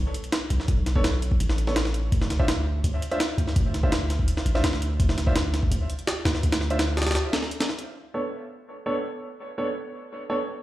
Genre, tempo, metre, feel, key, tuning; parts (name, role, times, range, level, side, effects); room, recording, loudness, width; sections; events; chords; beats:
drum and bass, jungle; 167 BPM; 4/4; straight; B minor; A4 = 441 Hz
long sustained 808-style bass; bass; 0.0-7.1 s; A1 to D2; -24 LUFS; equal
jungle sampler-style drum kit; drums; 0.1-7.9 s; hi-hat, kick drum, snare drum; -25 LUFS; equal; overdrive
warm baby grand piano; stabs; 1.0-10.3 s; B3 to E5; -31 LUFS; right 1 dB; low-pass filter, dub echo
light reverb; played on a big sound system in a bare room, large studio reverb; -23 LUFS; side -15 dB against mid
0.0-7.9 A section; 7.9-10.6 B section
break 7.2-7.9
0.0 B7(no3); 2.1 N.C.; 7.9 Bm9
0.33 | 0.69 1.04 1.40 1.76 | 2.12 2.48 2.84 3.20 | 3.56 3.92 4.28 4.64 | 5.00 5.36 5.71 6.07 | 6.43 6.79 7.15 7.51 | 7.87 8.23 8.59 8.95 | 9.31 9.67 10.03